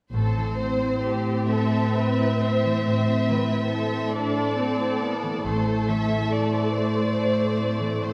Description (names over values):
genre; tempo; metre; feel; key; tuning
classical, slow romantic movement for symphony orchestra; 43-47 BPM (dotted quarters); 12/8; rubato; A minor; A4 = 435 Hz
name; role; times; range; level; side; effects
warm studio violin section; melody; 0.1-8.1 s; C5 to E5; -33 LUFS; equal; none
warm studio violin section; second line; 0.1-8.1 s; G4 to C5; -32 LUFS; equal; none
dark studio viola section; accompaniment; 0.1-8.1 s; A3 to D4; -31 LUFS; equal; none
concert harp; arpeggios; 0.1-8.1 s; A2 to E5; -31 LUFS; equal; none
dark studio cello section; bass; 0.1-8.1 s; A2; -29 LUFS; equal; none
warm studio double bass section; bass; 0.1-6.3 s; A1; -34 LUFS; equal; none
room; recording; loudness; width
wet concert hall reverb, RT60 1.9 s; none; -24 LUFS; mono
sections
0.1-8.1 A section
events
none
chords
0.1 Am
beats
| 0.13 1.51 2.86 4.15 | 5.45 6.74 8.02